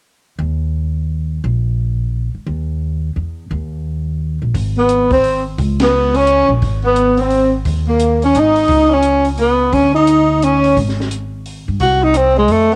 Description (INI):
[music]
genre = jazz, small-group swing and bop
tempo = 174 BPM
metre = 3/4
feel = swing 62% on 8ths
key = unclear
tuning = A4 = 441 Hz
[part]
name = upright bass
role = bass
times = 0.4-12.8 s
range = Ab1 to G2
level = -21 LUFS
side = equal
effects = none
[part]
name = compact cocktail drum kit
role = drums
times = 4.5-12.6 s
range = hi-hat, kick drum, ride cymbal, snare drum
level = -27 LUFS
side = equal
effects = cassette tape
[part]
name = breathy tenor saxophone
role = melody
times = 4.8-12.7 s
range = Ab3 to Gb4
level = -15 LUFS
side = equal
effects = cassette tape
[part]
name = mellow tenor saxophone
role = second line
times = 4.8-12.8 s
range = Ab3 to Gb4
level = -22 LUFS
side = equal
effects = cassette tape
[sound]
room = light reverb, studio reverb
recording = home recording on cassette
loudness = -15 LUFS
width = mono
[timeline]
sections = 0.4-4.5 A section; 4.5-12.8 B section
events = band accent 5.8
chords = 0.4 N.C.; 2.5 Eb5; 4.5 Ab; 5.6 Bbm; 6.6 Ab; 7.7 Eb5; 8.4 Ab5; 8.7 Bsus2/C#; 9.7 Dbsus2; 10.8 N.C.; 11.8 Cdim